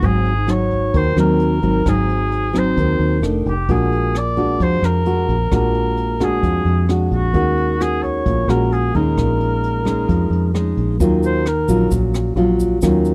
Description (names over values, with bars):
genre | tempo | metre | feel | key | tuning
bossa nova | 131 BPM | 4/4 | straight | Bb minor | A4 = 438 Hz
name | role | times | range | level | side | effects
warm oboe | melody | 0.0-11.9 s | Gb4 to D5 | -25 LUFS | equal | none
nylon-string guitar | accompaniment | 0.0-13.1 s | F2 to Gb4 | -21 LUFS | equal | none
fingered electric bass | bass | 0.0-13.1 s | F1 to F2 | -22 LUFS | equal | none
jazz brush drum kit | drums | 0.0-13.1 s | hi-hat, kick drum, rim click | -28 LUFS | equal | none
tube shaker | percussion | 11.0-13.1 s | none | -40 LUFS | equal | none
room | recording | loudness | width
small room ambience | dry, close 1970s-style studio recording | -17 LUFS | mono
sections
0.0-11.0 A section; 11.0-13.1 B section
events
oboe solo 11.0-13.1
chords
0.0 Ab7; 3.2 F13; 3.7 Bb7b13; 7.3 Ebm7; 9.2 Bbm7; 11.0 Ebm9